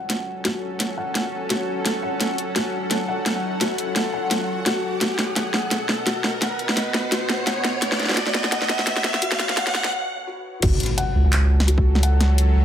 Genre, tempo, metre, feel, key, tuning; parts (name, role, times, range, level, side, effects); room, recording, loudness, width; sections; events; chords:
half-time drum and bass; 171 BPM; 4/4; swing 55% on 16ths, half-time; F# dorian; A4 = 442 Hz
bowed-like drone; sustained chords; 0.2-12.6 s; B2 to F#5; -28 LUFS; equal; built-in reverb, sidechain pumping
felt-muted upright piano; arpeggios; 0.0-12.6 s; F#4 to F#5; -29 LUFS; left 3 dB; low-pass filter, dub echo
saturated sub bass; bass; 0.0-12.6 s; F#1 to C#2; -17 LUFS; equal; high-pass filter
riser and impact; sound effects; 1.1-12.0 s; -29 LUFS; equal
drum and bass drum kit; drums; 0.1-12.5 s; crash cymbal, handclaps, hi-hat, snare drum; -23 LUFS; equal; overdrive
electronic kick drum; drums; 10.6-11.8 s; -20 LUFS; equal; overdrive
moderate digital room reverb, RT60 0.9 s; high-pass filter; -19 LUFS; side -10 dB against mid
0.0-10.6 A section; 10.6-12.6 B section
build-up 0.0-10.6; drum fill 0.0-9.9; filter sweep on felt piano 0.0-10.6; riser 1.1-9.9; break 9.9-10.6; drop 10.6-12.6; impact 10.6-12.0
0.0 F#m; 5.0 B; 10.6 F#m